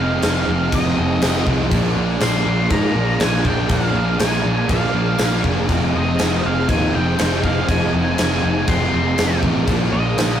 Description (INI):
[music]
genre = rock, shoegaze and dream pop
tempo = 121 BPM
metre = 4/4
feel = straight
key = unclear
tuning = A4 = 441 Hz
[part]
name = octave-fuzz lead guitar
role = melody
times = 0.0-10.4 s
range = Eb5 to C6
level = -25 LUFS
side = equal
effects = distortion
[part]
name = phased string machine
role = sustained chords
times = 0.0-10.4 s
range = D3 to F5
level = -28 LUFS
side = equal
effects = ensemble chorus, phaser
[part]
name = crunchy overdriven guitar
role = riff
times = 0.0-10.4 s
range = F2 to D4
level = -24 LUFS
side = right 5 dB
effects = none
[part]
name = thick fuzz guitar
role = riff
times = 0.0-10.4 s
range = F2 to Bb3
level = -25 LUFS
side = left 4 dB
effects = distortion
[part]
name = tight distorted guitar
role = riff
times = 0.0-10.4 s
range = F2 to D4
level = -26 LUFS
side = left 1 dB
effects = distortion
[part]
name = growling fingered electric bass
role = bass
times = 0.0-10.4 s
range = F1 to Ab2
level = -22 LUFS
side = equal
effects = overdrive
[part]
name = gated 80s drum kit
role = drums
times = 0.2-10.3 s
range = crash cymbal, kick drum, snare drum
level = -22 LUFS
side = equal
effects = none
[part]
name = tambourine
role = percussion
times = 0.2-10.3 s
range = none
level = -37 LUFS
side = right 4 dB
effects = none
[sound]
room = moderate studio reverb, RT60 0.5 s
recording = rough rehearsal-room recording, warm saturation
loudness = -16 LUFS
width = side -9 dB against mid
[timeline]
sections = 0.0-10.4 A section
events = none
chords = 0.0 Fm7; 1.7 Bb7; 5.7 Fm7; 9.7 Bb7